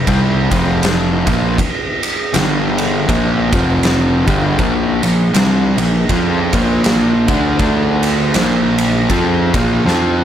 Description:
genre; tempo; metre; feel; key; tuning
stoner and doom metal; 80 BPM; 4/4; swing 59% on 8ths; unclear; A4 = 440 Hz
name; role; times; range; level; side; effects
fuzz picked electric bass; bass; 0.0-10.2 s; F1 to F2; -19 LUFS; equal; overdrive
fuzz guitar; riff; 0.1-10.2 s; F2 to F4; -15 LUFS; equal; distortion
oversized low-tuned drum kit; drums; 0.1-10.1 s; kick drum, ride cymbal, snare drum; -18 LUFS; equal; none
room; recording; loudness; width
light reverb; none; -12 LUFS; side -10 dB against mid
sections
0.0-10.2 A section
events
drum fill 9.8-10.2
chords
0.0 F5; 2.3 G5; 3.1 F5; 4.6 Bb5; 7.6 D5; 8.3 Bb5

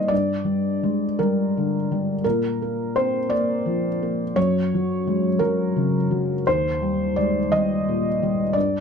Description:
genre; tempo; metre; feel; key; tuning
neoclassical minimalist piano; 57 BPM (dotted quarters); 6/8; rubato; Eb major; A4 = 439 Hz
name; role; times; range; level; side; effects
felt-muted upright piano; solo; 0.0-8.8 s; Eb2 to Eb5; -20 LUFS; equal; none
room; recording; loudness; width
light reverb; close, detailed microphones; -20 LUFS; side -6 dB against mid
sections
0.0-8.8 A section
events
none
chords
0.1 Gm; 2.2 Bb; 4.4 Gb; 6.5 Eb

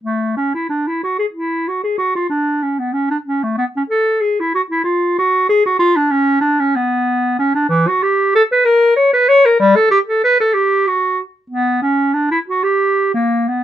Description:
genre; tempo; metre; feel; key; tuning
classical, baroque-style fantasia for unaccompanied clarinet; 63 BPM (dotted quarters); 6/8; rubato; F# minor, B minor from 7.7 s; A4 = 441 Hz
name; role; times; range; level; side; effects
clear clarinet; solo; 0.0-13.6 s; E3 to C#5; -13 LUFS; equal; none
room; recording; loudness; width
little or no reverb; close, detailed microphones; -13 LUFS; side -11 dB against mid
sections
0.0-13.6 A section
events
none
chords
none

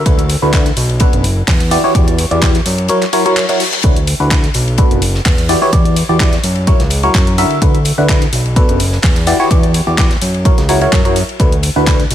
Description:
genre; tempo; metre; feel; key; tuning
piano house; 127 BPM; 4/4; swing 54% on 16ths; D major; A4 = 440 Hz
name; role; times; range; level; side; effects
barking FM electric piano; riff; 0.0-12.0 s; B2 to E5; -15 LUFS; equal; phaser, sidechain pumping, tape echo
fat analog bass; bass; 0.1-12.1 s; F#1 to F#2; -16 LUFS; equal; sidechain pumping
electronic kick drum; drums; 0.1-12.0 s; none; -13 LUFS; equal; studio reverb
garage drum kit; drums; 0.1-12.1 s; handclaps, hi-hat; -20 LUFS; equal; studio reverb
tight funk drum kit; drums; 0.1-12.1 s; hi-hat, ride cymbal, snare drum; -26 LUFS; left 2 dB; high-pass filter on cymbals, studio reverb, high-pass filter on hats, high-pass filter on snare, high-pass filter on room
reverse cymbal; sound effects; 3.1-3.8 s; none; -22 LUFS; left 7 dB; none
room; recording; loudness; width
small room reverb; none; -10 LUFS; side -11 dB against mid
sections
0.0-12.1 A section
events
reverse cymbal 3.1-3.8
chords
0.1 D69; 1.0 Bm7; 1.7 Em9; 2.9 F#7; 3.8 D69; 4.8 Bm7; 5.5 Em9; 6.7 F#7; 7.6 D69; 8.6 Bm7; 9.3 Em9; 10.5 F#7; 11.4 D69

